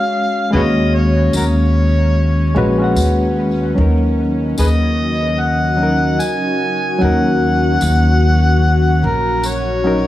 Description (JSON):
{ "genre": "trip hop", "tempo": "74 BPM", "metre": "4/4", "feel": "swing 59% on 16ths", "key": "Eb minor", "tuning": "A4 = 440 Hz", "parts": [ { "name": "overdriven harmonica", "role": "melody", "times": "0.0-10.1 s", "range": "Gb4 to Ab5", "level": "-20 LUFS", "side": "equal", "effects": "dub echo" }, { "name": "bright reed electric piano", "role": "accompaniment", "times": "0.0-10.1 s", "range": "Gb3 to Gb5", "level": "-19 LUFS", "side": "equal", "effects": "overdrive, harmonic tremolo, tape echo" }, { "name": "bowed-like drone", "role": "texture", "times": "0.0-10.1 s", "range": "Db4", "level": "-30 LUFS", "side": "right 1 dB", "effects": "none" }, { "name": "upright bass", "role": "bass", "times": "0.5-10.1 s", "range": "Bb1 to Eb2", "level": "-15 LUFS", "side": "equal", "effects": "none" }, { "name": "tambourine", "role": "percussion", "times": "1.3-9.6 s", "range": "none", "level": "-32 LUFS", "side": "left 1 dB", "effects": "dub echo" }, { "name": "dark analog pad", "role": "sustained chords", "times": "4.4-10.1 s", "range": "Db4 to Gb5", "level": "-23 LUFS", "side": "left 2 dB", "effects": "chorus, vintage 12-bit sampler grit" } ], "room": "studio reverb", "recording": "echo-heavy mix, vinyl crackle", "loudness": "-13 LUFS", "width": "side -14 dB against mid", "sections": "0.0-10.1 A section", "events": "none", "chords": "0.0 Gbsus2/Eb; 3.8 Ebm7" }